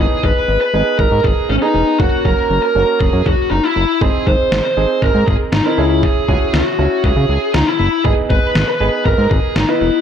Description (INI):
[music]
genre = synth-pop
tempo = 119 BPM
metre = 4/4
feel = straight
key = G# minor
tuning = A4 = 440 Hz
[part]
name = bluesy overdriven lead guitar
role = melody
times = 0.0-10.0 s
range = C#4 to B#4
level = -16 LUFS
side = left 2 dB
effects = distortion, analog delay
[part]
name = warm grand piano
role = accompaniment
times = 0.0-10.0 s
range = A#3 to D#5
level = -21 LUFS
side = right 8 dB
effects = none
[part]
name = fat analog bass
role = bass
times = 0.0-9.9 s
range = E1 to C#3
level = -17 LUFS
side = equal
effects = none
[part]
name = trip hop sampler-style drum kit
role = drums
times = 0.2-9.7 s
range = kick drum, snare drum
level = -18 LUFS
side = equal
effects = none
[sound]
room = moderate spring reverb, RT60 1.6 s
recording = echo-heavy mix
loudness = -12 LUFS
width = side -8 dB against mid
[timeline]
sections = 0.0-10.0 A section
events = none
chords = 0.0 G#m; 2.0 F#; 4.0 G#; 5.8 C#m; 8.0 G#m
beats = 0.48 0.99 1.49 | 2.00 2.50 3.01 3.51 | 4.01 4.52 5.02 5.53 | 6.03 6.54 7.04 7.54 | 8.05 8.55 9.06 9.56